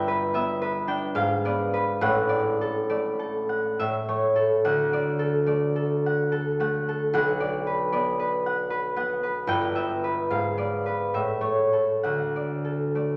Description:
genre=classical, solo harp piece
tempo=64-77 BPM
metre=3/4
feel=rubato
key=D major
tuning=A4 = 438 Hz
part: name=concert harp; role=solo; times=0.0-13.2 s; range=G1 to G5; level=-25 LUFS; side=equal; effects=none
room=wet recital hall reverb, RT60 1.5 s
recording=none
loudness=-25 LUFS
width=mono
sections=0.0-13.2 A section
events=none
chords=0.0 Em/G; 1.2 G#dim7; 2.0 D/A; 3.8 A; 4.7 D; 7.1 Bm; 9.5 Em/G; 10.3 G#dim7; 11.2 A; 12.0 D

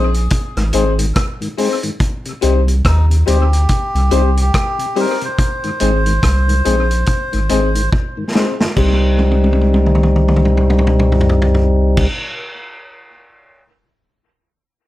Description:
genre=roots reggae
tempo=71 BPM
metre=4/4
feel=swing 60% on 16ths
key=C minor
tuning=A4 = 442 Hz
part: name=clear upright piano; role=stabs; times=0.0-12.1 s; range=C4 to C5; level=-20 LUFS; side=left 5 dB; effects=none
part: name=soft dub sub bass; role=bass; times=0.0-12.1 s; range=Ab1 to Eb2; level=-14 LUFS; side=equal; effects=none
part: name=vintage drum kit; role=drums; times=0.1-13.6 s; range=crash cymbal, hi-hat, kick drum, rim click, snare drum, toms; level=-18 LUFS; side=equal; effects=tape echo
part: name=tonewheel organ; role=accompaniment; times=0.6-12.1 s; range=Ab2 to Eb4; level=-20 LUFS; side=left 2 dB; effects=stopped rotary speaker
part: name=melodica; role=melody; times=2.9-7.9 s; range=Eb4 to C5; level=-22 LUFS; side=equal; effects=tape echo
room=light reverb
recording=none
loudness=-12 LUFS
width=side -15 dB against mid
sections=0.0-8.8 A section; 8.8-12.1 B section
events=drum fill 7.9-8.8, 9.2-11.9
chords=0.0 Ab; 2.0 Cm; 5.4 Ab; 8.8 Cm

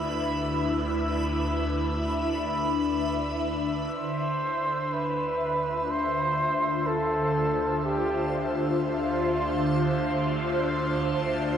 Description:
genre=ambient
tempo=62 BPM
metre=4/4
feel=straight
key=D dorian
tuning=A4 = 442 Hz
part: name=airy breathy pad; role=sustained chords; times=0.0-11.6 s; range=D3 to E5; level=-27 LUFS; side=left 1 dB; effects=chorus, phaser, shimmer reverb
part: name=clear studio double bass section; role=bass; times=0.0-11.6 s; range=D2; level=-35 LUFS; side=equal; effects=none
part: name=backwards swelling texture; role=texture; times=0.0-11.6 s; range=A5 to B5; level=-37 LUFS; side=right 3 dB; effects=built-in reverb, shimmer reverb
part: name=warm flugelhorn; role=melody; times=4.0-10.2 s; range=F4 to C5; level=-28 LUFS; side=right 1 dB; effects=shimmer reverb, tape echo
room=wet huge ambient reverb, RT60 8.1 s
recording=cassette tape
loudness=-24 LUFS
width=side -8 dB against mid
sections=0.0-4.0 A section; 4.0-11.6 B section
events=fade-in on double bass section 4.0-11.6; fade-in on synth texture 4.0-11.6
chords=0.0 Dsus2; 4.0 Dm7

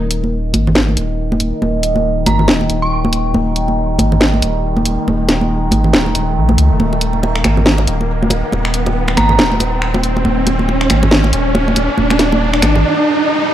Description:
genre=deep dubstep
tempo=139 BPM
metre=4/4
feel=swing 59% on 16ths, half-time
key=unclear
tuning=A4 = 440 Hz
part: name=overtone-sweeping drone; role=sustained chords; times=0.0-12.8 s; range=Eb3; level=-21 LUFS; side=equal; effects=chorus, built-in reverb
part: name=saturated sub bass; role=bass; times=0.0-12.8 s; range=Eb1 to Db2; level=-16 LUFS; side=equal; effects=transformer saturation
part: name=riser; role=sound effects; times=0.0-13.5 s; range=none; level=-19 LUFS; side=right 1 dB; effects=none
part: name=garage drum kit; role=drums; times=0.1-12.7 s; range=finger snaps, hi-hat, snare drum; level=-16 LUFS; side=equal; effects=none
part: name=congas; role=percussion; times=0.2-12.8 s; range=none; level=-18 LUFS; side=equal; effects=dub echo
part: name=dark detuned synth bell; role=melody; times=2.3-3.1, 9.2-9.6 s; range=Bb5 to Db6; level=-20 LUFS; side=right 3 dB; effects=chorus, tremolo, dub echo
room=light reverb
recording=dry, gritty hardware recording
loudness=-12 LUFS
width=side -11 dB against mid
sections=0.0-13.5 A section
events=build-up 0.0-13.5; riser 0.0-13.5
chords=0.0 Eb5

